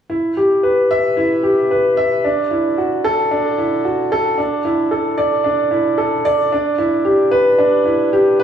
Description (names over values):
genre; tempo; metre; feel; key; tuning
electronica; 112 BPM; 4/4; straight; E minor; A4 = 440 Hz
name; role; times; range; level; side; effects
warm grand piano; riff; 0.1-8.4 s; D4 to E5; -14 LUFS; equal; tape echo
room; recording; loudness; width
moderate echo chamber reverb, RT60 2.5 s; small room reverb; -14 LUFS; side -8 dB against mid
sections
0.1-8.4 A section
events
none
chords
none